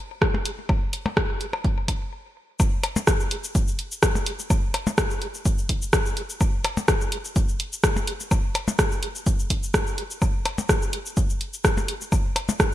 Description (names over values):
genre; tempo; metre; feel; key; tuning
techno; 126 BPM; 4/4; swing 54% on 16ths; none; none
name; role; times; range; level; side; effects
electronic kick drum; drums; 0.2-12.7 s; none; -23 LUFS; equal; none
punchy analog drum machine; drums; 0.2-12.7 s; hi-hat, rim click, shaker; -25 LUFS; equal; gated reverb
percussion blips; percussion; 0.2-12.6 s; none; -30 LUFS; left 2 dB; overdrive, ping-pong delay
room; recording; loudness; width
little or no reverb; bright 1980s-style digital production; -22 LUFS; side -14 dB against mid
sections
0.0-2.6 A section; 2.6-12.7 B section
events
stop 2.1-2.6; drop 2.6-12.7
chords
none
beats
0.22 | 0.69 1.17 1.65 2.12 | 2.60 3.07 3.55 4.03 | 4.50 4.98 5.46 5.93 | 6.41 6.88 7.36 7.84 | 8.31 8.79 9.27 9.74 | 10.22 10.69 11.17 11.65 | 12.12 12.60